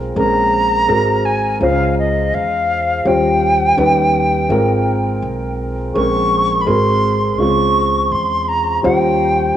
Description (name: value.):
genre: hip hop, jazz-hop.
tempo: 83 BPM.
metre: 4/4.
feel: swing 61% on 16ths.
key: unclear.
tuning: A4 = 440 Hz.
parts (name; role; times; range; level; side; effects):
dark grand piano; accompaniment; 0.0-9.6 s; G3 to Bb5; -17 LUFS; equal; cassette tape.
upright bass; bass; 0.0-9.5 s; Ab1 to E2; -22 LUFS; equal; none.
silver concert flute; melody; 0.2-9.6 s; Eb5 to Db6; -16 LUFS; equal; cassette tape, analog delay.
room: moderate spring reverb, RT60 1.2 s, small room ambience.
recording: home recording on cassette.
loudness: -13 LUFS.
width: side -10 dB against mid.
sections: 0.0-9.6 A section.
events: grand piano fill 0.0.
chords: 0.2 Bbm9; 0.9 Ab9; 1.6 Dbmaj7; 3.1 Eb13; 3.8 Ebaug7; 4.5 Ab69; 5.9 Bbm9; 6.7 Ab9; 7.4 Dbmaj7; 8.8 Eb13.